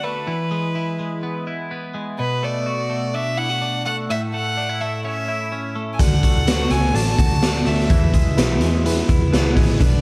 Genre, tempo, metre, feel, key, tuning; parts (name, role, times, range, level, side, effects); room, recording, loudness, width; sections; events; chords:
jangly indie pop; 126 BPM; 4/4; straight; E mixolydian; A4 = 440 Hz
warm violin; melody; 0.0-10.0 s; B4 to A5; -28 LUFS; equal
twelve-string electric guitar; arpeggios; 0.0-10.0 s; A2 to F#4; -28 LUFS; equal; phaser
mellow reed electric piano; accompaniment; 6.0-10.0 s; D4 to D5; -29 LUFS; equal; tremolo, slapback echo
vintage muted picked electric bass; bass; 6.0-10.0 s; A1 to E2; -24 LUFS; equal
raw garage drum kit; drums; 6.0-9.9 s; hi-hat, kick drum, snare drum; -20 LUFS; equal
light reverb, studio ambience; -20 LUFS; mono
0.0-10.0 A section
0.3 E; 2.2 Bm7; 4.1 A; 6.0 D; 7.9 E